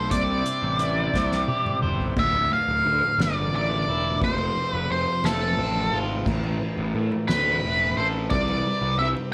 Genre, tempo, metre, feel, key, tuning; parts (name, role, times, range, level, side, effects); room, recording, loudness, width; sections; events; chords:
psychedelic rock; 58 BPM (dotted quarters); 6/8; straight; D minor; A4 = 440 Hz
octave-fuzz lead guitar; melody; 0.0-9.1 s; A4 to F5; -27 LUFS; equal; distortion, slapback echo
combo organ; sustained chords; 0.0-2.1 s; G3 to E4; -39 LUFS; equal; spring reverb
electric guitar at the edge of break-up; riff; 0.0-9.3 s; D2 to C5; -32 LUFS; equal; harmonic tremolo
fuzz picked electric bass; bass; 0.0-9.1 s; D1 to A2; -30 LUFS; equal; overdrive
soft-mallet drum kit; drums; 0.1-9.2 s; crash cymbal, hi-hat, kick drum, ride cymbal, snare drum, toms; -33 LUFS; equal
congas; percussion; 0.1-9.3 s; -38 LUFS; equal
small room ambience; -24 LUFS; mono
0.0-2.2 A section; 2.2-9.3 B section
drum fill 1.1-2.2
0.1 Cadd9; 2.2 Dmadd9; 4.2 F; 6.3 Amadd9; 8.3 Cadd9